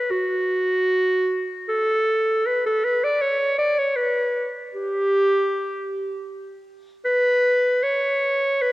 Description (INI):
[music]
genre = classical, free, expressive piece for unaccompanied clarinet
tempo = 77 BPM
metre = 3/4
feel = rubato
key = B minor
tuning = A4 = 440 Hz
[part]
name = warm clarinet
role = solo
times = 0.0-8.7 s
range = F#4 to D5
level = -19 LUFS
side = equal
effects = none
[sound]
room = wet church reverb, RT60 2.9 s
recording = worn, warbling old tape, cassette tape, warbly pitch drift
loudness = -19 LUFS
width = side -18 dB against mid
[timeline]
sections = 0.0-8.7 A section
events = none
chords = none